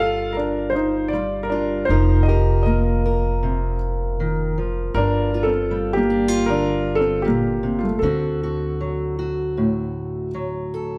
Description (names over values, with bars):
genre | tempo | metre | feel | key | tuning
acoustic folk-pop ballad | 78 BPM | 4/4 | straight | G minor | A4 = 440 Hz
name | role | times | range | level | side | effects
warm concert grand piano | melody | 0.0-10.3 s | A3 to F5 | -24 LUFS | equal | none
fingerpicked steel-string acoustic guitar | accompaniment | 0.0-11.0 s | G2 to Bb4 | -27 LUFS | equal | none
upright bass | bass | 0.0-11.0 s | F1 to D2 | -26 LUFS | equal | none
room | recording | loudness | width
moderate stone room reverb, RT60 1.4 s | band playing live in one room | -21 LUFS | mono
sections
0.0-11.0 A section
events
none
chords
0.0 G5; 1.9 F7sus4; 5.0 Gm7; 8.0 D7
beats
0.36 1.12 | 1.89 2.66 3.42 4.19 | 4.96 5.72 6.49 7.26 | 8.03 8.79 9.56 10.33